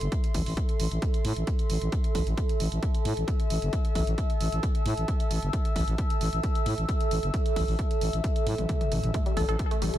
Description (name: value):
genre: driving peak-time techno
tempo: 133 BPM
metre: 4/4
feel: straight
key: A minor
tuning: A4 = 435 Hz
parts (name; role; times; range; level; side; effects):
- growling FM bass; bass; 0.0-10.0 s; G1 to A2; -28 LUFS; equal; sidechain pumping
- punchy analog drum machine; drums; 0.0-10.0 s; hi-hat, toms; -39 LUFS; right 2 dB; sidechain pumping on hats, sidechain pumping on toms
- warbly tape-like pad; texture; 0.0-10.0 s; A4 to E6; -32 LUFS; right 1 dB; chorus, built-in reverb, phaser, sidechain pumping
- electronic kick drum; drums; 0.1-9.7 s; none; -27 LUFS; equal; overdrive
- tight sequenced synth; riff; 9.1-10.0 s; G3 to A4; -32 LUFS; equal; chorus, tube saturation, sidechain pumping, ping-pong delay
room: little or no reverb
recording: none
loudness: -25 LUFS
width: side -12 dB against mid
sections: 0.0-10.0 A section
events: drum fill 8.5-9.1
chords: 0.0 Am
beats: | 0.12 0.57 1.02 1.47 | 1.92 2.38 2.83 3.28 | 3.73 4.18 4.63 5.08 | 5.53 5.98 6.43 6.89 | 7.34 7.79 8.24 8.69 | 9.14 9.59